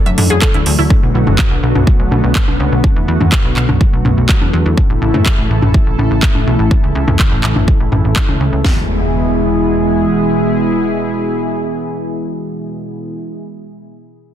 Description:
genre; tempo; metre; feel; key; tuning
progressive house; 124 BPM; 4/4; straight; E mixolydian; A4 = 438 Hz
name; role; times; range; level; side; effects
wide unison pluck; melody; 0.0-0.9 s; A4; -27 LUFS; equal; sidechain pumping, ping-pong delay
lush unison pad; sustained chords; 0.0-13.1 s; B2 to A4; -17 LUFS; equal; chorus, sidechain pumping
glassy wavetable pluck; arpeggios; 0.1-0.8 s; E4 to E5; -20 LUFS; equal; chorus, sidechain pumping, tape echo
plucky analog bass; bass; 0.1-10.1 s; F#1 to A2; -15 LUFS; equal; sidechain pumping
house drum kit; drums; 0.1-8.3 s; handclaps, hi-hat; -19 LUFS; right 1 dB; soft clipping on snare
electronic toms and congas; percussion; 0.2-8.4 s; none; -19 LUFS; left 1 dB; sidechain pumping on perc, sidechain pumping on toms
house drum kit; drums; 0.4-8.8 s; kick drum, snare drum; -12 LUFS; equal; none
impact; sound effects; 8.6-13.2 s; none; -24 LUFS; equal; none
room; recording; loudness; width
light reverb; dense, heavily limited modern master; -11 LUFS; side -10 dB against mid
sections
0.0-8.6 A section; 8.6-12.5 B section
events
none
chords
0.0 Dadd9; 0.9 Bm7; 4.8 A; 8.6 E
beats
0.42 | 0.90 1.39 1.87 2.35 | 2.84 3.32 3.81 4.29 | 4.77 5.26 5.74 6.23 | 6.71 7.19 7.68 8.16 | 8.64 9.13 9.61 10.10 | 10.58 11.06 11.55 12.03

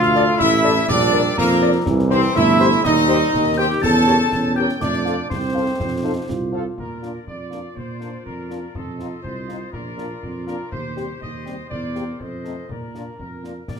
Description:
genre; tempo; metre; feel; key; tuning
military-style march for wind band; 122 BPM; 2/4; straight; Bb major; A4 = 440 Hz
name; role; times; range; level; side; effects
warm trumpet section; melody; 0.0-13.8 s; A4 to A5; -28 LUFS; equal; none
clear woodwind section; second line; 0.0-13.8 s; F4 to A5; -28 LUFS; left 1 dB; none
dark euphonium; second line; 0.0-6.7 s; C#3 to F4; -25 LUFS; right 4 dB; none
glockenspiel with rubber mallets; second line; 0.0-6.5 s; Bb5 to A6; -27 LUFS; left 4 dB; none
warm trombone section; sustained chords; 0.0-6.5 s; Bb3 to A4; -20 LUFS; right 1 dB; none
dark tuba; bass; 0.0-13.8 s; G1 to Bb2; -23 LUFS; right 2 dB; none
concert snare drum, concert bass drum and clash cymbals; drums; 0.0-13.8 s; none; -32 LUFS; left 2 dB; none
warm French horn section; accompaniment; 0.2-13.5 s; G3 to F5; -26 LUFS; left 6 dB; none
room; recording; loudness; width
wet large studio reverb, RT60 0.9 s; none; -16 LUFS; side -6 dB against mid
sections
0.0-6.8 A section; 6.8-13.8 B section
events
none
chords
0.0 Dm; 0.9 Bb; 1.9 C; 2.8 Cm/Eb; 3.8 Edim7; 4.8 F; 6.8 Bb; 8.7 F7; 9.7 Bb; 10.7 Cm/Eb; 11.7 C7/E; 12.2 F7; 12.7 Bb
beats
0.39 | 0.88 1.37 | 1.86 2.35 | 2.84 3.33 | 3.82 4.32 | 4.81 5.30 | 5.79 6.28 | 6.77 7.27 | 7.76 8.25 | 8.75 9.24 | 9.73 10.23 | 10.72 11.22 | 11.71 12.20 | 12.70 13.19 | 13.69

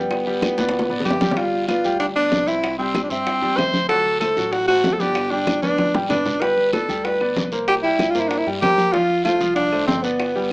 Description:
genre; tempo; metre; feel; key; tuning
latin, salsa; 190 BPM; 4/4; straight; unclear; A4 = 440 Hz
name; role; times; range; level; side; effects
breathy tenor saxophone; melody; 0.0-10.5 s; B3 to C5; -19 LUFS; equal; plate reverb
bright grand piano; accompaniment; 0.0-10.5 s; F3 to G5; -25 LUFS; equal; plate reverb
upright bass; bass; 0.0-10.5 s; G1 to G2; -35 LUFS; equal; none
bongos; percussion; 0.1-10.4 s; none; -27 LUFS; left 1 dB; none
claves; percussion; 0.1-10.4 s; none; -35 LUFS; right 1 dB; none
congas; percussion; 0.1-10.5 s; none; -26 LUFS; equal; none
guiro; percussion; 0.1-10.5 s; none; -34 LUFS; equal; none
room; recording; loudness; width
wet small room reverb, RT60 0.5 s; rough home demo mix, small speaker sound; -17 LUFS; side -24 dB against mid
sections
0.0-1.4 A section; 1.4-10.5 B section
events
drum fill 0.6-1.4, 5.6-6.4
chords
0.1 G; 1.4 G7; 2.6 C; 3.9 D7; 5.2 G; 6.4 Gadd9; 7.7 C5; 8.9 F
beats
| 0.11 0.42 0.74 1.05 | 1.37 1.69 2.00 2.32 | 2.63 2.95 3.26 3.58 | 3.90 4.21 4.53 4.84 | 5.16 5.47 5.79 6.10 | 6.42 6.73 7.05 7.36 | 7.68 7.99 8.31 8.62 | 8.94 9.25 9.57 9.88 | 10.20 10.51

